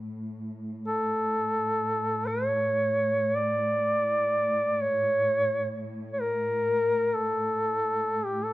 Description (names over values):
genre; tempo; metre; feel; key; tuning
caucasian folk, Caucasian lament; free time; none; none; A major; A4 = 440 Hz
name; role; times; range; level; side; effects
dark symphonic cello section; drone; 0.0-8.5 s; A2; -35 LUFS; equal; none
warm duduk; melody; 0.9-8.5 s; G4 to D5; -25 LUFS; equal; none
room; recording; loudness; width
light reverb, small room ambience; rough home demo mix; -24 LUFS; side -17 dB against mid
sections
0.0-8.5 A section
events
none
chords
none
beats
free time